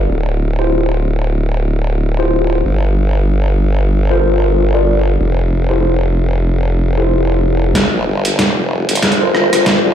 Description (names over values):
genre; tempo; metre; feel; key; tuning
glitch hop; 94 BPM; 4/4; swing 57% on 16ths; G dorian; A4 = 440 Hz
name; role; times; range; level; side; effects
formant-sweep wobble bass; bass; 0.0-9.9 s; D1 to C2; -14 LUFS; equal; chorus, overdrive, high-pass filter
mellow tine electric piano; stabs; 0.6-9.9 s; E4 to D5; -18 LUFS; left 1 dB; medium stereo tremolo, sidechain pumping, low-pass filter, ping-pong delay
boom bap sampler-style drum kit; drums; 7.8-9.8 s; hi-hat, rim click, snare drum; -14 LUFS; right 1 dB; high-pass filter on snare, high-pass filter on hats, high-pass filter on room
electronic kick drum; drums; 7.8-9.8 s; none; -26 LUFS; equal; high-pass filter on kick, high-pass filter on room
room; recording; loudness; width
light reverb; played on a big sound system in a bare room, large studio reverb; -12 LUFS; side -10 dB against mid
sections
0.0-7.8 A section; 7.8-9.9 B section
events
build-up 7.8-9.9; drum fill 7.8-9.9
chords
0.1 Dm11; 2.6 Gm11; 5.2 Fmaj9; 7.8 Gm11